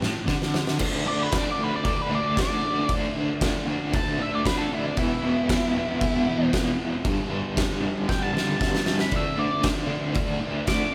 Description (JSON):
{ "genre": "garage rock duo or trio", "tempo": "116 BPM", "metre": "4/4", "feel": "straight", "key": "unclear", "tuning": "A4 = 440 Hz", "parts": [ { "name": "crunchy overdriven guitar", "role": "riff", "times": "0.0-10.9 s", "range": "E2 to D4", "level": "-28 LUFS", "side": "equal", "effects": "tremolo" }, { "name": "oversized low-tuned drum kit", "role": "drums", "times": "0.0-10.8 s", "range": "crash cymbal, kick drum, snare drum", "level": "-29 LUFS", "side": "equal", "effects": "none" }, { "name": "octave-fuzz lead guitar", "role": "melody", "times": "1.1-10.9 s", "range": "D4 to D6", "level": "-31 LUFS", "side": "equal", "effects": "distortion" } ], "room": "moderate large studio reverb, RT60 1.3 s", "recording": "band playing live in one room", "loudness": "-25 LUFS", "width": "mono", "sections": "0.8-10.9 A section", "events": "drum fill 0.0-0.8, 8.1-9.1; lead electric guitar solo 0.8-10.9", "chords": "0.0 N.C.; 0.8 D5; 5.0 E5; 7.0 G5; 9.1 D5", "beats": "0.29 | 0.81 1.33 1.85 2.37 | 2.89 3.41 3.93 4.45 | 4.97 5.49 6.01 6.53 | 7.05 7.56 8.08 8.60 | 9.12 9.64 10.16 10.67" }